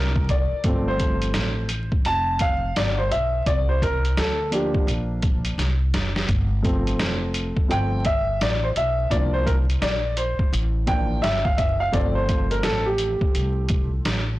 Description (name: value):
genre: hip hop, jazz-hop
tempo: 85 BPM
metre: 4/4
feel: swing 63% on 16ths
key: G dorian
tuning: A4 = 440 Hz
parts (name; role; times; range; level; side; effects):
- warm upright piano; accompaniment; 0.0-14.4 s; F3 to A5; -24 LUFS; equal; none
- upright bass; bass; 0.0-14.4 s; F1 to D2; -24 LUFS; equal; none
- trip hop sampler-style drum kit; drums; 0.2-14.3 s; hi-hat, kick drum, snare drum; -24 LUFS; equal; none
room: small room ambience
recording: blown-out, overdriven recording, vinyl crackle, overdrive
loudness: -20 LUFS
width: side -17 dB against mid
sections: 0.0-14.4 A section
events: upright piano solo 0.0-14.4; drum fill 5.6-6.3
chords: 0.0 C9sus4; 0.6 G9sus4; 3.5 C9sus4; 6.3 G9sus4; 9.1 C9sus4; 11.9 G9sus4